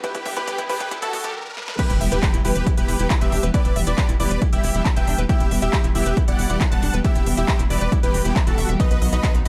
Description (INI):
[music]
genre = uplifting trance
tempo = 137 BPM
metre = 4/4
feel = straight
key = E minor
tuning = A4 = 440 Hz
[part]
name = dense compressed supersaw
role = melody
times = 0.0-9.5 s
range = F#4 to A5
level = -30 LUFS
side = equal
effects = sidechain pumping, digital delay
[part]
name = unison pluck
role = second line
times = 0.0-9.5 s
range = A4 to A5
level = -35 LUFS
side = equal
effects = sidechain pumping, digital delay
[part]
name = warm symphonic string section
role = sustained chords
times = 0.0-9.5 s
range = D3 to G4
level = -30 LUFS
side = equal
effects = sidechain pumping
[part]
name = analog pluck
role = arpeggios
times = 0.0-9.5 s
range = E3 to E5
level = -34 LUFS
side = equal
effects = chorus, sidechain pumping, digital delay
[part]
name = big-room dance drum kit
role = drums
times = 0.0-9.5 s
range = crash cymbal, handclaps, hi-hat, snare drum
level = -32 LUFS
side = equal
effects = overdrive, sidechain pumping on hats, sidechain pumping on cymbals
[part]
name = electronic kick drum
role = drums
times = 0.0-9.3 s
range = none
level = -23 LUFS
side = equal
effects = overdrive
[part]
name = riser and impact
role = sound effects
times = 0.0-3.5 s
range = none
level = -35 LUFS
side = equal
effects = none
[part]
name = tight sequencer bass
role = bass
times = 0.1-9.5 s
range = E1 to B1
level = -26 LUFS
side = equal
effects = tube saturation, sidechain pumping, high-pass filter
[sound]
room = digital ambience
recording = high-pass filter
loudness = -20 LUFS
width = mono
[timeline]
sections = 0.0-1.8 A section; 1.8-9.5 B section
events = build-up 0.0-1.8; drum fill 0.0-1.4, 1.6; riser 0.0-1.8; stop 1.4-1.8; drop 1.8-9.5; impact 1.8-3.5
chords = 0.0 G; 1.8 Em; 8.8 B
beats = | 0.04 0.48 0.91 1.35 | 1.79 2.23 2.67 3.10 | 3.54 3.98 4.42 4.86 | 5.29 5.73 6.17 6.61 | 7.05 7.48 7.92 8.36 | 8.80 9.24